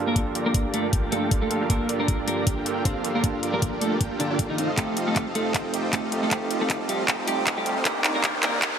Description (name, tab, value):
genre	future bass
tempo	156 BPM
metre	4/4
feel	swing 55% on 16ths, half-time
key	G minor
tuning	A4 = 440 Hz
part	bell-like tine electric piano	accompaniment	0.0-8.8 s	A3 to A4	-30 LUFS	right 4 dB	medium stereo tremolo, sidechain pumping
part	airy breathy pad	sustained chords	0.0-8.8 s	F2 to D5	-38 LUFS	left 1 dB	chorus, sidechain pumping
part	dense compressed supersaw	riff	0.0-8.8 s	C4 to A5	-29 LUFS	right 1 dB	sidechain pumping, low-pass filter
part	clean electric guitar	melody	0.1-8.6 s	D3 to C5	-29 LUFS	equal	wide subtle chorus, sidechain pumping, low-pass filter, digital delay
part	electronic kick drum	drums	0.2-8.7 s	none	-26 LUFS	equal	none
part	trap drum kit	drums	0.2-8.7 s	handclaps, hi-hat	-26 LUFS	equal	none
part	riser	sound effects	5.8-8.8 s	none	-31 LUFS	left 1 dB	none
room	moderate lush hall reverb, RT60 2.3 s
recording	high-pass filter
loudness	-22 LUFS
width	side -8 dB against mid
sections	0.0-8.8 A section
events	build-up 0.0-8.8; filter sweep on supersaw synth 0.0-8.8; filter sweep 0.0-8.8; drum fill 4.8-8.8; riser 5.8-8.8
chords	0.0 Gm7; 4.6 F7; 7.9 Cm9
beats	| 0.16 0.54 0.93 1.31 | 1.70 2.08 2.47 2.85 | 3.24 3.62 4.01 4.39 | 4.78 5.16 5.54 5.93 | 6.31 6.70 7.08 7.47 | 7.85 8.24 8.62